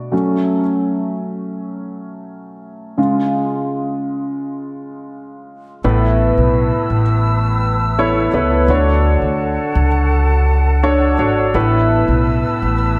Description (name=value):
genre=piano-driven pop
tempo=84 BPM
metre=4/4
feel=straight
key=unclear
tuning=A4 = 441 Hz
part: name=warm concert grand piano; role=accompaniment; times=0.0-13.0 s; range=A2 to C#5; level=-20 LUFS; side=equal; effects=analog chorus
part: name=small flute group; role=sustained chords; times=5.8-13.0 s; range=A4 to E6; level=-26 LUFS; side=equal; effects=none
part: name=upright bass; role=bass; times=5.8-13.0 s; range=G#1 to D2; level=-18 LUFS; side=equal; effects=none
room=moderate lush hall reverb, RT60 2.1 s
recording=dreamy mix soaked in reverb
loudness=-16 LUFS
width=mono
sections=0.0-5.8 A section; 5.8-13.0 B section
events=grand piano solo 0.0-5.8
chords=0.1 F#m; 3.0 C#; 5.8 Asus2; 8.7 Dmaj7; 11.5 Asus2